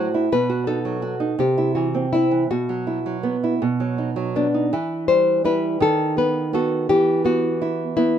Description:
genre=romantic duo for nylon-string guitar and classical guitar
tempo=55 BPM (dotted quarters)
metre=6/8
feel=rubato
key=E minor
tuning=A4 = 438 Hz
part: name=nylon-string guitar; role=melody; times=0.0-8.2 s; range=D4 to C5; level=-21 LUFS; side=left 4 dB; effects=none
part: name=nylon-string guitar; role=accompaniment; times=0.0-8.2 s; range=A2 to F#4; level=-21 LUFS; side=right 4 dB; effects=none
room=light reverb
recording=minimal, uncompressed stereo recording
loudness=-18 LUFS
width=side -9 dB against mid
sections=0.0-4.7 A section; 4.7-8.2 B section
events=none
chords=0.3 B; 1.4 C; 2.5 Bsus4; 3.6 B; 4.7 Em; 5.8 B/D#; 6.9 E5

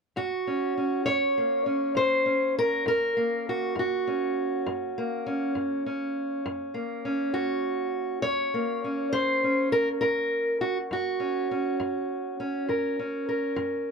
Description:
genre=acoustic country blues, solo or duo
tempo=67 BPM (dotted quarters)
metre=12/8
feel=straight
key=F# major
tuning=A4 = 440 Hz
part: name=fingerpicked steel-string acoustic guitar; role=solo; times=0.2-13.9 s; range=F#2 to C#5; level=-25 LUFS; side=equal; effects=none
room=light reverb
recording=none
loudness=-25 LUFS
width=side -5 dB against mid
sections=0.2-13.9 A section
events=none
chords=0.2 F#

